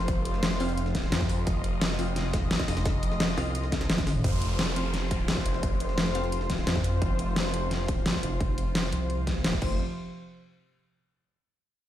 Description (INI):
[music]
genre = dark technical drum and bass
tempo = 173 BPM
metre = 4/4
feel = straight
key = unclear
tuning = A4 = 439 Hz
[part]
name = muted studio string section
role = sustained chords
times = 0.0-9.8 s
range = C3 to Eb5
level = -34 LUFS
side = left 1 dB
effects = sidechain pumping
[part]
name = orchestra-hit-like synth stab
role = stabs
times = 0.0-7.2 s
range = C4 to F5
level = -37 LUFS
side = left 1 dB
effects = built-in reverb, cassette tape, ping-pong delay
[part]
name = phased detuned saw bass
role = bass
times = 0.0-9.8 s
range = Eb1 to F2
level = -30 LUFS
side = equal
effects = phaser, overdrive, sidechain pumping
[part]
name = breakbeat sampler-style drum kit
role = drums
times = 0.1-6.9 s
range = hi-hat, snare drum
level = -39 LUFS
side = equal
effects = none
[part]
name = dubstep drum kit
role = drums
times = 0.1-9.7 s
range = crash cymbal, hi-hat, snare drum, toms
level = -30 LUFS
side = equal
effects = overdrive
[part]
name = electronic kick drum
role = drums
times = 0.1-9.7 s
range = none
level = -30 LUFS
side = equal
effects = overdrive
[part]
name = pulsing pluck wobble bass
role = bass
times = 3.4-4.2 s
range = Eb1 to C2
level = -30 LUFS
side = equal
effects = chorus
[part]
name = downlifter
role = sound effects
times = 4.2-7.0 s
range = none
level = -40 LUFS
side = equal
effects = none
[sound]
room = light reverb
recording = played on a big sound system in a bare room, stone room reverb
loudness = -25 LUFS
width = side -12 dB against mid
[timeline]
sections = 0.0-4.2 A section; 4.2-9.8 B section; 9.8-11.2 C section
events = drop 0.0-4.2; drum fill 3.9-4.2; filter sweep on detuned saw bass 4.2-9.8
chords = 0.0 F5; 9.8 N.C.